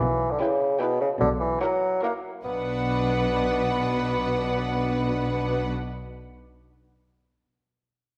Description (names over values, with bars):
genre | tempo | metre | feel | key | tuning
cinematic, playful, whimsical film cue | 146 BPM | 3/4 | straight | B minor | A4 = 441 Hz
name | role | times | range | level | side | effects
warm bassoon | accompaniment | 0.0-5.7 s | B2 to B3 | -28 LUFS | equal | none
rich studio cello section | bass | 0.0-5.7 s | B2 | -34 LUFS | equal | none
rich studio double bass section | bass | 0.0-5.7 s | B1 | -33 LUFS | equal | none
rich studio violin section | melody | 0.4-5.7 s | F#5 to G5 | -38 LUFS | equal | none
warm symphonic violin section | second line | 0.4-5.7 s | A#4 to B4 | -36 LUFS | equal | none
rich studio viola section | accompaniment | 0.4-5.7 s | D4 to E4 | -36 LUFS | equal | none
room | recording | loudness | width
wet scoring stage reverb, RT60 1.9 s | none | -25 LUFS | mono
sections
0.0-2.5 A section; 2.5-4.9 B section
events
none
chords
0.0 Em/B; 1.2 F#7/B; 2.5 Bm